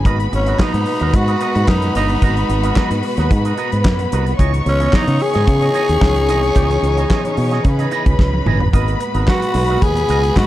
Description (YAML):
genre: disco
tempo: 110 BPM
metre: 4/4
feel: straight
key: G# minor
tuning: A4 = 439 Hz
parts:
  - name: electric guitar with an envelope filter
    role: accompaniment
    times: 0.0-10.4 s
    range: B3 to F#5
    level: -26 LUFS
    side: right 9 dB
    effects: none
  - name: clear studio string section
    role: sustained chords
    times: 0.0-10.5 s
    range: A#2 to F#4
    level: -25 LUFS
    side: left 1 dB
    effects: none
  - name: fingered electric bass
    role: bass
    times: 0.0-10.5 s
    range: G1 to C#3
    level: -18 LUFS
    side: equal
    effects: none
  - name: warm studio violin section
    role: second line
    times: 0.1-10.5 s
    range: B4 to C#6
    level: -24 LUFS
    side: left 1 dB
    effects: none
  - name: warm soul drum kit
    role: drums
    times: 0.1-10.5 s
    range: handclaps, hi-hat, kick drum, snare drum, toms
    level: -18 LUFS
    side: equal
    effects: none
  - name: growling tenor saxophone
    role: melody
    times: 0.3-10.5 s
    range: C#4 to G#4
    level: -19 LUFS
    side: left 1 dB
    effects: none
room: small room ambience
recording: dark, warm production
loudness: -13 LUFS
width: side -14 dB against mid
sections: 0.0-8.7 A section; 8.7-10.5 B section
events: drum fill 8.2-8.7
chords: 0.1 G#m9; 4.4 C#m9; 8.7 G#m9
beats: | 0.05 0.59 1.14 1.68 | 2.22 2.76 3.31 3.85 | 4.39 4.93 5.48 6.02 | 6.56 7.11 7.65 8.19 | 8.74 9.28 9.82 10.37